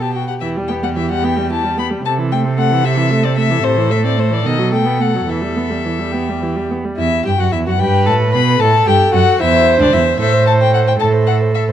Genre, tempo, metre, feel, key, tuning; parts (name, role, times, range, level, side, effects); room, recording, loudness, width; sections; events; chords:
quick classical-period movement for string quartet; 74 BPM (dotted quarters); 6/8; rubato; E minor; A4 = 440 Hz
rich violin; melody; 0.0-11.6 s; C5 to B5; -19 LUFS; left 8 dB
warm violin; second line; 0.0-11.7 s; D4 to C5; -21 LUFS; left 3 dB
warm viola; accompaniment; 0.0-11.7 s; C3 to C5; -18 LUFS; right 2 dB
rich cello; bass; 0.0-11.7 s; D2 to C3; -17 LUFS; right 3 dB
moderate recital hall reverb, RT60 1.6 s; dark, warm production; -12 LUFS; side -10 dB against mid
0.0-7.0 A section; 7.0-11.7 B section
0.4 Em; 2.0 Am/C; 3.6 Am; 4.4 B7; 5.3 Em; 8.6 Am